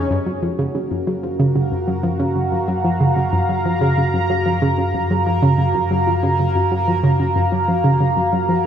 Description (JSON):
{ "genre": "ambient, sequencer-driven space music", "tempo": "93 BPM", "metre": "4/4", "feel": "straight", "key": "Gb major", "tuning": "A4 = 441 Hz", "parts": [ { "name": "sweeping resonant pad", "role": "sustained chords", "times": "0.0-8.7 s", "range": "Db4 to Bb5", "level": "-20 LUFS", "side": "right 1 dB", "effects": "chorus" }, { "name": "round analog bass", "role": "bass", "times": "0.0-8.7 s", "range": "Gb2", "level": "-24 LUFS", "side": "left 1 dB", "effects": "none" }, { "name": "bubbling stepped-filter texture", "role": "texture", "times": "0.0-8.7 s", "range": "Bb3 to Bb4", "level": "-37 LUFS", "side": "left 1 dB", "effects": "chorus, built-in reverb" }, { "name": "analog pluck", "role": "riff", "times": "0.1-8.5 s", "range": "Gb2 to Gb3", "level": "-19 LUFS", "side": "right 1 dB", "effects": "chorus, tape echo" } ], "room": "wet lush hall reverb, RT60 2.8 s", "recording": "none", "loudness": "-16 LUFS", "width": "side -9 dB against mid", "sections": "0.1-8.7 A section", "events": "none", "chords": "0.1 Gbmaj7" }